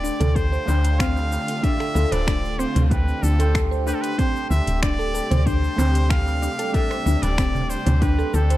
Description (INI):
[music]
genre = organic downtempo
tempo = 94 BPM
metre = 4/4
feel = straight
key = D minor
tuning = A4 = 440 Hz
[part]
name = trumpet with straight mute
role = melody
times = 0.0-8.6 s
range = A4 to F5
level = -28 LUFS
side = equal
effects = tape echo
[part]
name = electric guitar with an envelope filter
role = accompaniment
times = 0.0-8.6 s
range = A3 to D5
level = -30 LUFS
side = right 2 dB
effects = spring reverb, sidechain pumping
[part]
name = bright studio string section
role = sustained chords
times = 0.0-8.6 s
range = C3 to G4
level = -34 LUFS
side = left 1 dB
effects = sidechain pumping
[part]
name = mallet-like synth pluck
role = arpeggios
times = 0.0-8.6 s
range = C4 to C5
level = -27 LUFS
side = equal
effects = chorus, tape echo
[part]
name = woody FM bass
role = bass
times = 0.0-8.6 s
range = D1 to D2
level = -20 LUFS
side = equal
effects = none
[part]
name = deep house drum kit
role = drums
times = 0.0-8.6 s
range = finger snaps, hi-hat, shaker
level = -32 LUFS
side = left 1 dB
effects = overdrive
[part]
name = darbuka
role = percussion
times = 0.0-8.6 s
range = none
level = -32 LUFS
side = right 2 dB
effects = none
[part]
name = electronic kick drum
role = drums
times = 0.4-8.2 s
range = none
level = -23 LUFS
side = equal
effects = overdrive
[sound]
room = light reverb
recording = dark, warm production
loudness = -18 LUFS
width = side -15 dB against mid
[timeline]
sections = 0.0-8.6 A section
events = none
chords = 0.0 Dm7; 4.2 Csus2/D